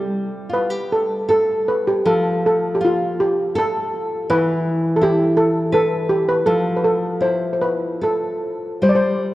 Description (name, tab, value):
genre	celtic folk, Celtic slow air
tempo	73-84 BPM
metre	3/4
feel	rubato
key	unclear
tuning	A4 = 441 Hz
part	steel pan	melody	0.0-9.3 s	F4 to D5	-18 LUFS	equal	none
part	nylon-string guitar	accompaniment	0.0-9.3 s	E3 to B4	-21 LUFS	equal	none
room	wet church reverb, RT60 3.4 s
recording	worn, warbling old tape, cassette tape, warbly pitch drift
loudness	-16 LUFS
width	side -16 dB against mid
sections	0.0-9.3 A section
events	none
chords	0.0 Gsus2; 2.1 F; 4.3 Emadd11; 6.5 Fmaj7; 8.8 Gsus4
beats	0.52 1.30 | 2.07 2.82 3.56 | 4.29 5.01 5.73 | 6.46 7.22 8.01 | 8.82